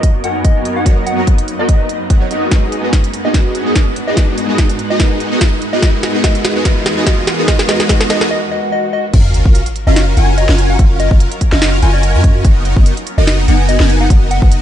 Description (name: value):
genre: future bass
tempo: 145 BPM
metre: 4/4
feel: swing 54% on 16ths, half-time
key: F# major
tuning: A4 = 440 Hz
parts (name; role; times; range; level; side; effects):
- soft struck synth lead; melody; 0.0-14.5 s; D#5 to G#5; -22 LUFS; left 2 dB; chorus, sidechain pumping, ping-pong delay
- glassy digital keys; accompaniment; 0.0-9.2 s; F#3 to D#5; -22 LUFS; right 1 dB; chorus, sidechain pumping, ping-pong delay
- shimmering ambient pad; sustained chords; 0.0-14.6 s; E2 to A#4; -26 LUFS; equal; chorus, built-in reverb, sidechain pumping
- supersaw chords; riff; 0.0-14.6 s; B3 to G#5; -18 LUFS; equal; ensemble chorus, sidechain pumping, low-pass filter
- electronic kick drum; drums; 0.0-14.5 s; none; -11 LUFS; equal; studio reverb
- trap drum kit; drums; 0.0-14.6 s; crash cymbal, hi-hat, snare drum; -19 LUFS; equal; studio reverb
- riser, swell and sub drop; sound effects; 0.6-10.8 s; none; -24 LUFS; right 1 dB; none
- warm 808-style bass; bass; 9.1-14.6 s; F#1 to F#2; -13 LUFS; equal; tube saturation, sidechain pumping
room: little or no reverb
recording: nothing above 10.4 kHz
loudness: -10 LUFS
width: side -11 dB against mid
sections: 0.0-9.1 A section; 9.1-14.6 B section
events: build-up 0.0-9.1; filter sweep on supersaw synth 0.0-9.1; riser 0.6-8.3; drum fill 2.5-8.3; break 8.3-9.1; swell 8.3-9.1; drop 9.1-14.6; impact 9.1-10.8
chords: 0.0 Bmaj7/F#; 2.5 G#m7; 5.8 Emaj9#11; 9.1 F#maj7; 12.4 Bmaj7/F#